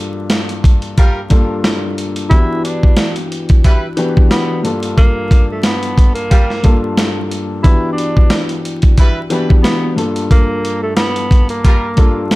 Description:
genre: hip hop, boom-bap hip-hop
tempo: 90 BPM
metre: 4/4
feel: swing 57% on 16ths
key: unclear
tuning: A4 = 441 Hz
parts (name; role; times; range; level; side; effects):
- dark baby grand piano; accompaniment; 0.0-12.4 s; G2 to A4; -19 LUFS; left 2 dB; cassette tape, high-pass filter, low-pass filter
- dusty soul sampler-style drum kit; drums; 0.3-12.4 s; hi-hat, kick drum, snare drum; -11 LUFS; equal; none
- warm horn section; stabs; 1.0-11.9 s; G3 to B4; -24 LUFS; right 1 dB; high-pass filter, low-pass filter, digital delay
- breathy tenor saxophone; melody; 2.3-12.3 s; A3 to E4; -20 LUFS; right 1 dB; high-pass filter, low-pass filter
room: studio ambience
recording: dark, warm production, vinyl crackle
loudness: -11 LUFS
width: side -20 dB against mid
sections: 0.0-12.4 A section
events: break 0.0-2.3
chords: 0.0 Gm7; 2.3 Em7; 4.6 Gm7; 7.6 Em7; 10.0 Gm7

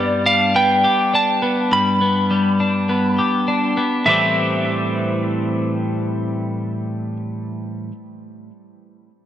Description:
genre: rock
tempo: 102 BPM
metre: 4/4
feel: straight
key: A minor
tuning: A4 = 440 Hz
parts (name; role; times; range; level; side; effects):
- lightly driven lead guitar; melody; 0.0-7.2 s; D5 to B5; -19 LUFS; right 1 dB; analog delay
- twelve-string electric guitar; arpeggios; 0.0-7.9 s; G2 to G4; -19 LUFS; left 1 dB; lush chorus, analog delay
room: wet lush hall reverb, RT60 2.8 s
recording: none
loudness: -16 LUFS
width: side -11 dB against mid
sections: 0.0-4.1 A section; 4.1-6.4 B section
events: none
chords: 0.0 G; 4.1 Am7

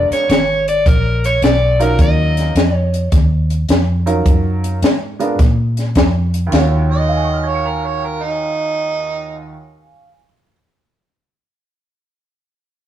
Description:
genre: electric blues shuffle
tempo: 106 BPM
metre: 4/4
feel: swing 67% on 8ths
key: Eb minor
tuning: A4 = 439 Hz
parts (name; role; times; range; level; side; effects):
- overdriven semi-hollow guitar; melody; 0.0-3.1 s; Bb4 to Eb5; -17 LUFS; left 1 dB; spring reverb
- clear upright piano; accompaniment; 0.0-10.5 s; Eb2 to F7; -21 LUFS; right 3 dB; none
- vintage muted fingered electric bass; bass; 0.0-9.5 s; Ab1 to Bb2; -16 LUFS; equal; none
- compact cocktail drum kit; drums; 0.1-6.7 s; hi-hat, kick drum, snare drum, splash cymbal; -15 LUFS; equal; none
- overdriven harmonica; second line; 6.9-9.6 s; Eb4 to Eb5; -20 LUFS; right 3 dB; none
room: light reverb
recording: rough rehearsal-room recording, warm saturation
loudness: -13 LUFS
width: side -11 dB against mid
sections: 0.0-6.5 A section; 6.5-8.8 B section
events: none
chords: 0.0 Bb7b9; 2.0 Ebm9; 5.4 Bb5; 6.5 Ebm9

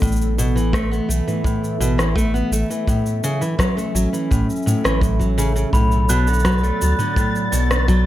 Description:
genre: folktronica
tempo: 84 BPM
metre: 4/4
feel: straight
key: B minor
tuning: A4 = 439 Hz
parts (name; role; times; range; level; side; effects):
- warbly tape-like pad; sustained chords; 0.0-8.1 s; E3 to E5; -25 LUFS; right 1 dB; chorus, built-in reverb, phaser
- fingerpicked steel-string acoustic guitar; arpeggios; 0.0-8.0 s; A2 to B3; -22 LUFS; equal; digital delay
- warm sub bass; bass; 0.0-8.1 s; A1 to D2; -19 LUFS; equal; tube saturation
- kick drum; drums; 0.0-8.0 s; none; -21 LUFS; equal; none
- organic electronic drum kit; drums; 0.0-8.0 s; cabasa, rim click, toms; -25 LUFS; equal; none
- glockenspiel with rubber mallets; second line; 5.7-6.8 s; B5 to F#6; -24 LUFS; equal; vintage 12-bit sampler grit, digital delay
- flickering grainy texture; texture; 6.2-8.1 s; A6; -28 LUFS; equal; built-in reverb, plate reverb
room: light reverb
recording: none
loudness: -16 LUFS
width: side -14 dB against mid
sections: 0.0-8.1 A section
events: none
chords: 0.0 Asus2; 2.9 F#m7/A; 5.7 Bm7

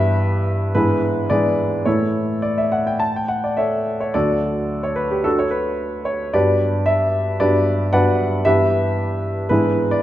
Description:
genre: classical, romantic character piece for solo piano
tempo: 104-116 BPM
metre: 4/4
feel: rubato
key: D major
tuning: A4 = 440 Hz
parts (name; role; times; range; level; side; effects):
- warm grand piano; solo; 0.0-10.0 s; D2 to A5; -17 LUFS; equal; none
room: wet recital hall reverb, RT60 1.6 s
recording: minimal, uncompressed stereo recording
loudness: -17 LUFS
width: side -13 dB against mid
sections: 0.0-10.0 A section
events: none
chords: 0.0 Em/G; 0.8 E7/G#; 1.9 A; 4.1 D; 6.3 Gmaj7; 8.4 Em/G; 9.5 E7/G#

